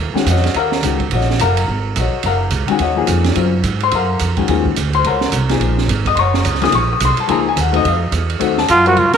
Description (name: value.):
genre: modal jazz.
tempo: 214 BPM.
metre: 4/4.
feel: swing 60% on 8ths.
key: Eb dorian.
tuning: A4 = 436 Hz.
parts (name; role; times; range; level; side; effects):
upright bass; bass; 0.0-9.2 s; Gb1 to Ab2; -18 LUFS; right 2 dB; none.
warm grand piano; accompaniment; 0.1-9.0 s; Db3 to Eb6; -17 LUFS; left 8 dB; none.
open jazz drum kit; drums; 0.2-9.2 s; hi-hat, kick drum, ride cymbal, snare drum; -21 LUFS; right 10 dB; none.
warm trumpet; melody; 8.7-9.2 s; F4 to Bb4; -10 LUFS; right 2 dB; none.
room: moderate spring reverb, RT60 2.2 s.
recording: 1960s-style stereo with parts hard left and right.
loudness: -13 LUFS.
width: side -7 dB against mid.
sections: 0.0-9.0 A section.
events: none.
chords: 0.0 Ebm9; 4.5 Gb; 7.8 F7b9.